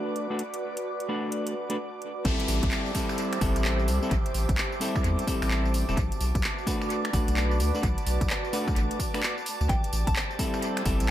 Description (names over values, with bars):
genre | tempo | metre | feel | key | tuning
UK garage, two-step garage | 129 BPM | 4/4 | swing 63% on 16ths | A dorian | A4 = 440 Hz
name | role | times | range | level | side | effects
ethereal airy pad | sustained chords | 0.0-11.1 s | D6 | -40 LUFS | right 3 dB | ensemble chorus, built-in reverb, phaser, sidechain pumping
semi-hollow electric guitar | stabs | 0.0-11.1 s | G3 to B4 | -31 LUFS | left 1 dB | tape echo
airy breathy pad | texture | 0.0-11.1 s | F#4 to A5 | -34 LUFS | equal | chorus, sidechain pumping
house drum kit | drums | 0.2-11.1 s | finger snaps, handclaps, hi-hat, tambourine | -32 LUFS | equal | overdrive, analog delay
saturated sub bass | bass | 2.3-11.1 s | E1 to E2 | -27 LUFS | equal | none
electronic kick drum | drums | 2.3-11.0 s | none | -29 LUFS | equal | overdrive
downlifter | sound effects | 2.3-6.0 s | none | -38 LUFS | left 1 dB | none
mallet-like synth pluck | melody | 9.7-10.2 s | G5 to A5 | -36 LUFS | left 1 dB | chorus, tape echo
room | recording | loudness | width
light reverb | echo-heavy mix | -25 LUFS | side -12 dB against mid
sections
0.0-2.3 A section; 2.3-11.1 B section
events
filter sweep on clean electric guitar 0.0-2.3; drop 2.3-11.1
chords
0.0 Bm7; 2.3 Am7; 6.0 Bm7; 9.7 Am7